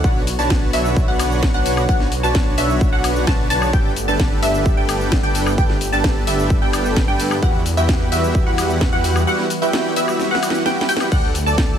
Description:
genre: EDM, festival progressive house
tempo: 130 BPM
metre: 4/4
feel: straight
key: unclear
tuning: A4 = 439 Hz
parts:
  - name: lush unison pad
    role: sustained chords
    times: 0.0-11.8 s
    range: D3 to C#5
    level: -27 LUFS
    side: equal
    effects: chorus, sidechain pumping
  - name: wide unison pluck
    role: arpeggios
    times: 0.0-11.8 s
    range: E5 to A5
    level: -24 LUFS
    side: equal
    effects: lush chorus, sidechain pumping, ping-pong delay
  - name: dense compressed supersaw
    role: riff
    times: 0.0-11.8 s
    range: D4 to A5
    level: -21 LUFS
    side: right 1 dB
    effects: sidechain pumping, ping-pong delay
  - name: detuned saw bass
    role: bass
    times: 0.0-11.8 s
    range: G1 to G2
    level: -22 LUFS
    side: equal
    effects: sidechain pumping
  - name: electronic kick drum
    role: drums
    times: 0.0-11.7 s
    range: none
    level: -18 LUFS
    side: equal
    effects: none
  - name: house drum kit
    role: drums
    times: 0.0-11.7 s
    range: crash cymbal, hi-hat, shaker, snare drum, woodblock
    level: -24 LUFS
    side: left 2 dB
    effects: none
room: light reverb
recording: none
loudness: -15 LUFS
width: side -9 dB against mid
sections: 0.0-11.8 A section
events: drum fill 10.2-11.1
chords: 0.0 Bmadd9; 3.7 Gadd9; 7.4 Emadd9; 11.1 D

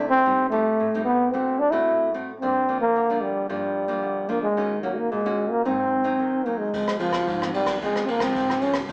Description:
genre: samba and choro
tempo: 111 BPM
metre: 4/4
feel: straight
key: unclear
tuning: A4 = 439 Hz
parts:
  - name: breathy trombone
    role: melody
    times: 0.0-8.8 s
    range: F3 to E4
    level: -24 LUFS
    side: equal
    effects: none
  - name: nylon-string guitar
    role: accompaniment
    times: 0.0-8.9 s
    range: G2 to F#4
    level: -33 LUFS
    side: equal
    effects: none
  - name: jazz brush drum kit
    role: drums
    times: 6.7-8.9 s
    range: kick drum, ride cymbal, rim click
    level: -31 LUFS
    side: equal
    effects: none
room: moderate large studio reverb, RT60 1.2 s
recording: band playing live in one room, small speaker sound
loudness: -24 LUFS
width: mono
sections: 0.0-8.9 A section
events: none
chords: 0.3 Am7b5; 1.3 D7; 2.4 Gm7; 4.6 Ebm7; 5.7 Ab7; 6.7 Dbmaj7

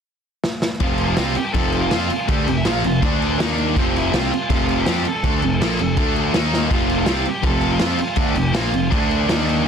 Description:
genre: punk rock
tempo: 163 BPM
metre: 4/4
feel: straight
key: F major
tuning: A4 = 440 Hz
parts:
  - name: raw garage drum kit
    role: drums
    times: 0.4-9.6 s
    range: crash cymbal, kick drum, snare drum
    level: -22 LUFS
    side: equal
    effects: none
  - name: dark smooth lead guitar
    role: melody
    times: 0.8-9.7 s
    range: C4 to A5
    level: -26 LUFS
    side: right 2 dB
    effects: overdrive
  - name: distorted electric guitar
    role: riff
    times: 0.8-9.7 s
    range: F2 to F4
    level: -23 LUFS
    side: left 17 dB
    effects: overdrive
  - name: distorted electric guitar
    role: riff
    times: 0.8-9.7 s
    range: F2 to F4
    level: -23 LUFS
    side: right 15 dB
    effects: overdrive
  - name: fuzz picked electric bass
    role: bass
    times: 0.8-9.6 s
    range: F1 to F2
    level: -24 LUFS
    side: left 1 dB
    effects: overdrive
room: little or no reverb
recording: dense, heavily limited modern master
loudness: -17 LUFS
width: side -7 dB against mid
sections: 0.8-9.7 A section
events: drum fill 0.4-0.8, 6.5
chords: 0.0 N.C.; 0.8 F; 3.0 D5; 3.4 Eb5; 3.8 F; 6.0 D5; 6.3 Eb5; 6.7 F; 8.9 D5; 9.3 Eb5

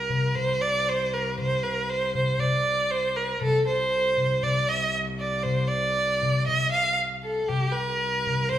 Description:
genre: Arabic maqam ensemble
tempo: 118 BPM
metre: 4/4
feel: straight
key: C maqam rast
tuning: A4 = 438 Hz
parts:
  - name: rich violin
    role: melody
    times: 0.0-8.6 s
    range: G4 to F5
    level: -24 LUFS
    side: right 1 dB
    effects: none
  - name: clear cello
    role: drone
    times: 0.0-8.6 s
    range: C2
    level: -35 LUFS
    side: left 2 dB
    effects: none
  - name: darbuka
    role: percussion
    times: 0.1-8.6 s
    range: none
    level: -29 LUFS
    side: left 2 dB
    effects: none
room: wet recital hall reverb, RT60 1.4 s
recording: recorded in a church or concert hall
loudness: -22 LUFS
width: side -11 dB against mid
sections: 0.0-8.6 A section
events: drum fill 2.9-3.4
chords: none

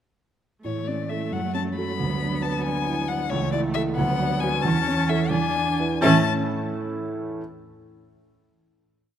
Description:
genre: quick classical-period movement for piano quartet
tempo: 90 BPM (dotted quarters)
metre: 6/8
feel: straight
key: A major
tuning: A4 = 440 Hz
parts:
  - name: rich violin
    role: melody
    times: 0.6-6.3 s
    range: C#5 to B5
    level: -27 LUFS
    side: left 8 dB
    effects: none
  - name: clear viola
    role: accompaniment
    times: 0.6-6.3 s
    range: A3 to D4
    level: -30 LUFS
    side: right 2 dB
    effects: none
  - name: warm baby grand piano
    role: accompaniment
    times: 0.6-7.4 s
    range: C#2 to E5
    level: -25 LUFS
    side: right 1 dB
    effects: none
  - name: rich cello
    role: second line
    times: 0.7-6.3 s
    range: E3 to F#3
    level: -29 LUFS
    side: right 5 dB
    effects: none
room: moderate concert hall reverb, RT60 2.4 s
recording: close, detailed microphones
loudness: -22 LUFS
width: side -10 dB against mid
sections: 0.7-6.0 A section; 6.0-7.4 final chord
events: none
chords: 0.7 A; 1.3 F#m; 2.0 Bm/D; 3.3 A/C#; 4.0 Bm/D; 4.6 A/E; 5.3 E7; 6.0 A

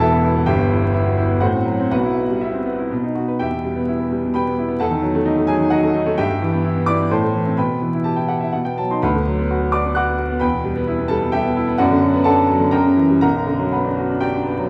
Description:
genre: classical, virtuoso piano study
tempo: 118-133 BPM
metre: 3/4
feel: rubato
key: E minor, B minor from 9.0 s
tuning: A4 = 440 Hz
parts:
  - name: bright baby grand piano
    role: solo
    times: 0.0-14.7 s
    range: E1 to F#6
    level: -19 LUFS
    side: equal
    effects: none
room: wet large studio reverb, RT60 1.3 s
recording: heard from further back in the room, vinyl crackle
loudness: -19 LUFS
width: mono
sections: 0.0-3.4 A section; 3.4-14.7 B section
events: none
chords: 0.5 Em/G; 1.4 F#dim/A; 1.9 Em/B; 2.9 B; 3.4 Em; 4.8 D#dim/E; 6.2 Em/G; 7.1 Am; 7.6 Em/B; 8.5 B; 9.0 Bm/D; 10.4 Em; 11.8 Bm/F#; 12.7 F#7b9; 13.2 Bm

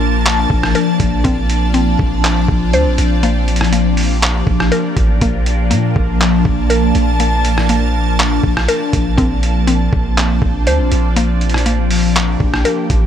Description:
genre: hip hop, atmospheric cloud-rap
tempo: 121 BPM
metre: 4/4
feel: half-time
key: Bb major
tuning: A4 = 436 Hz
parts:
  - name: ethereal airy pad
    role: sustained chords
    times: 0.0-13.1 s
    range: F3 to A5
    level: -17 LUFS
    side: left 2 dB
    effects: ensemble chorus, built-in reverb, phaser, sidechain pumping
  - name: mallet-like synth pluck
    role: arpeggios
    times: 0.0-13.1 s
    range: Bb3 to C5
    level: -21 LUFS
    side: left 2 dB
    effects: chorus, low-pass filter, ping-pong delay
  - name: long sustained 808-style bass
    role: bass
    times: 0.0-13.1 s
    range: A1 to Bb2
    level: -16 LUFS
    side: equal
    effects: none
  - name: downlifter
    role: sound effects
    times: 0.0-1.2 s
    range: none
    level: barely audible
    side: none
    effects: none
  - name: trip hop sampler-style drum kit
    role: drums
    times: 0.3-13.0 s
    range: handclaps, hi-hat, kick drum, rim click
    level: -18 LUFS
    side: equal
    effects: none
room: little or no reverb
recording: none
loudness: -12 LUFS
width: side -9 dB against mid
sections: 0.0-13.1 A section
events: none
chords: 0.0 Bbmaj7; 1.2 Dm7/Bb; 3.2 Gm7/Bb; 5.2 Bbmaj7; 9.2 Dm7/Bb; 11.2 Gm7/Bb

